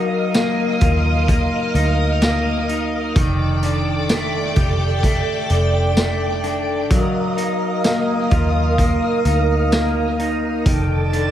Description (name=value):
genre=dream pop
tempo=64 BPM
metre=4/4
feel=straight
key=unclear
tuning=A4 = 440 Hz
part: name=ensemble organ-string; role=sustained chords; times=0.0-11.3 s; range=A4 to Eb6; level=-22 LUFS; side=equal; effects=phaser, ensemble chorus
part: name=electric guitar at the edge of break-up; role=arpeggios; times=0.0-11.3 s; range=Eb3 to G4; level=-22 LUFS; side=left 1 dB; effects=lush chorus, tape echo
part: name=vintage muted picked electric bass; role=bass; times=0.0-11.3 s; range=F1 to Eb2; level=-20 LUFS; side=equal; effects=none
part: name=raw garage drum kit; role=drums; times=0.3-11.3 s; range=hi-hat, kick drum, snare drum, tambourine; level=-21 LUFS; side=equal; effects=none
part: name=drifting glass-harmonics texture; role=texture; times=11.0-11.3 s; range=A5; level=-28 LUFS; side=right 8 dB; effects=chorus, built-in reverb
room=light reverb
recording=echo-heavy mix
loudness=-16 LUFS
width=side -11 dB against mid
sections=0.0-11.3 A section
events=none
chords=0.0 Ebmadd9; 3.2 F13; 6.9 Ebmadd9; 10.7 F13